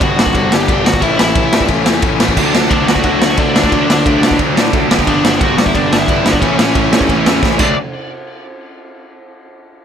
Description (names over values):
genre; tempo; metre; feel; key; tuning
punk rock; 178 BPM; 4/4; straight; D major; A4 = 440 Hz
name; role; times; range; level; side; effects
high-gain lead guitar; melody; 0.0-7.8 s; C#4 to G5; -18 LUFS; right 1 dB; distortion, digital delay
biting overdriven guitar; riff; 0.0-7.7 s; G2 to D4; -19 LUFS; left 1 dB; none
raw garage guitar; riff; 0.0-7.7 s; G2 to E4; -19 LUFS; left 15 dB; overdrive
fuzz picked electric bass; bass; 0.0-7.8 s; G1 to B2; -19 LUFS; right 1 dB; overdrive
raw garage drum kit; drums; 0.0-7.7 s; crash cymbal, kick drum, ride cymbal, snare drum; -15 LUFS; right 1 dB; none
overdriven electric guitar; riff; 2.4-7.7 s; G2 to E4; -19 LUFS; right 13 dB; none
room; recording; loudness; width
little or no reverb; none; -10 LUFS; side -8 dB against mid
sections
0.0-7.8 A section; 7.8-9.1 B section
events
drum fill 7.4-7.8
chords
0.0 G; 1.0 A; 2.4 D; 4.9 G; 6.4 A; 7.6 D; 7.8 N.C.